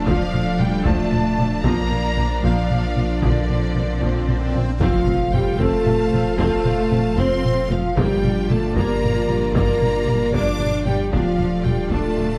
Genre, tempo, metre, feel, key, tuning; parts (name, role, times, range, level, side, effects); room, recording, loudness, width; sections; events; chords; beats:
cinematic, hybrid orchestral and electronic film score; 76 BPM (dotted quarters); 6/8; straight; A4 = 443 Hz
clear symphonic violin section; melody; 0.0-12.4 s; D5 to Bb5; -34 LUFS; equal
rich symphonic violin section; second line; 0.0-12.4 s; F4 to D6; -34 LUFS; equal
rich symphonic viola section; accompaniment; 0.0-12.4 s; F3 to F4; -30 LUFS; equal
hollow soft pad; sustained chords; 0.0-12.4 s; F3 to D5; -32 LUFS; equal; chorus
mellow French horn section; sustained chords; 0.0-12.4 s; F3 to D5; -27 LUFS; equal
clear symphonic cello section; bass; 0.0-12.4 s; D3 to D4; -28 LUFS; equal
warm sub bass; bass; 0.0-12.4 s; D1 to Bb1; -29 LUFS; equal
rich symphonic double bass section; bass; 0.1-12.3 s; F1 to D2; -29 LUFS; equal
taiko ensemble; drums; 0.1-12.4 s; -26 LUFS; equal
swell and impact; sound effects; 3.6-6.4 s; -31 LUFS; equal
moderate recital hall reverb, RT60 1.4 s; dark, warm production; -20 LUFS; mono
0.0-4.8 A section; 4.8-12.4 A section
swell 3.6-4.8; impact 4.8-6.4
0.0 Dm; 1.7 Bb; 4.8 F; 8.0 Gm7; 11.1 Dm
| 0.07 0.86 | 1.65 2.44 | 3.23 4.02 | 4.81 5.60 | 6.39 7.18 | 7.97 8.76 | 9.55 10.34 | 11.12 11.91